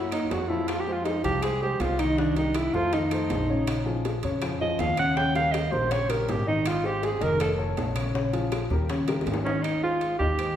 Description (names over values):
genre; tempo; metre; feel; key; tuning
Afro-Cuban jazz; 161 BPM; 4/4; straight; Ab major; A4 = 440 Hz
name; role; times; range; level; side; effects
breathy alto saxophone; melody; 0.0-10.6 s; Db4 to G5; -26 LUFS; right 2 dB; none
warm baby grand piano; accompaniment; 0.0-10.5 s; Db3 to F5; -30 LUFS; left 3 dB; none
upright bass; bass; 0.0-10.6 s; F1 to Gb2; -30 LUFS; equal; none
bongos; percussion; 0.1-9.5 s; none; -36 LUFS; left 3 dB; none
claves; percussion; 0.1-10.6 s; none; -45 LUFS; left 4 dB; none
timbales; percussion; 0.1-10.6 s; none; -38 LUFS; right 4 dB; none
room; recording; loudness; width
wet recital hall reverb, RT60 1.5 s; recorded in a church or concert hall; -23 LUFS; side -10 dB against mid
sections
0.0-9.6 A section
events
alto saxophone solo 0.0-9.6; drum fill 9.1-9.6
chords
0.0 Gb; 0.7 Fm7; 2.2 Cm7; 2.9 F7; 3.7 Bbm7; 5.2 Eb7; 6.7 Ab6; 7.4 Faug; 8.2 Bbm7; 8.9 Eb7; 9.6 Ab6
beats
0.31 | 0.69 1.06 1.43 1.81 | 2.18 2.56 2.93 3.30 | 3.67 4.05 4.42 4.79 | 5.17 5.54 5.91 6.29 | 6.66 7.03 7.41 7.78 | 8.15 8.52 8.90 9.27 | 9.64 10.02 10.39